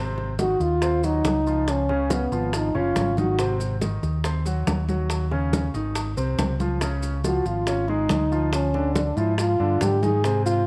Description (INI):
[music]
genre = Afro-Cuban jazz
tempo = 140 BPM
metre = 4/4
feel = straight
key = Ab mixolydian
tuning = A4 = 440 Hz
[part]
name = warm concert grand piano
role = accompaniment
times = 0.0-10.6 s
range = C3 to Db5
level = -31 LUFS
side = equal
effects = none
[part]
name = fingered electric bass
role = bass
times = 0.0-10.7 s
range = Gb1 to Ab2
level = -28 LUFS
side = equal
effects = none
[part]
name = bongos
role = percussion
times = 0.2-10.7 s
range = none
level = -34 LUFS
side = equal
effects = none
[part]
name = congas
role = percussion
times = 0.2-10.7 s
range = none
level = -32 LUFS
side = equal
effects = none
[part]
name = mellow French horn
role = melody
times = 0.4-3.6, 7.2-10.7 s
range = Cb4 to Ab4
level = -26 LUFS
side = equal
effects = none
[part]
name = maracas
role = percussion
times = 0.4-10.7 s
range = none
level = -42 LUFS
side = equal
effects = none
[sound]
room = light reverb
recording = none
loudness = -23 LUFS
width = mono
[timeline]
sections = 0.0-10.7 A section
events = none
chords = 0.0 Ab6; 1.7 Db9; 3.4 Ab7; 5.1 Ebm7; 6.0 Ab6; 6.8 Dbadd9; 8.5 Ddim